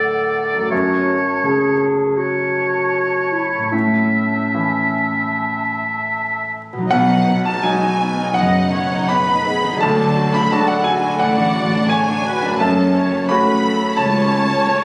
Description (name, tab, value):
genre	cinematic, emotional film score for orchestra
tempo	74-88 BPM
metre	4/4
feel	rubato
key	unclear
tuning	A4 = 439 Hz
part	clear oboe	second line	0.0-6.5 s	C#5 to E5	-22 LUFS	equal	none
part	mellow large flute ensemble	second line	0.0-6.5 s	F#5 to A5	-30 LUFS	equal	none
part	warm clarinet	second line	0.0-6.1 s	C#4 to A4	-24 LUFS	equal	none
part	bright baby grand piano	accompaniment	0.0-14.8 s	B1 to B5	-22 LUFS	equal	none
part	concert harp	arpeggios	0.0-14.8 s	F#2 to D#5	-30 LUFS	equal	none
part	warm symphonic violin section	melody	6.9-14.8 s	A3 to F#4	-27 LUFS	equal	none
part	rich symphonic violin section	second line	6.9-14.8 s	F#5 to B5	-25 LUFS	equal	none
part	warm chamber double bass section	bass	6.9-14.6 s	F#1 to D2	-27 LUFS	equal	none
part	warm symphonic cello section	bass	6.9-14.6 s	C#2 to D3	-25 LUFS	equal	none
part	warm symphonic viola section	accompaniment	8.3-14.8 s	G#4 to D#5	-26 LUFS	equal	none
room	moderate scoring stage reverb, RT60 1.5 s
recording	recorded on a phone in the room, club reverb, vinyl crackle, compression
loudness	-17 LUFS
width	mono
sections	0.0-6.9 A section; 6.9-14.8 A section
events	none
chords	0.0 D; 0.7 F#m; 3.7 A; 6.9 B; 9.8 D; 12.6 F#m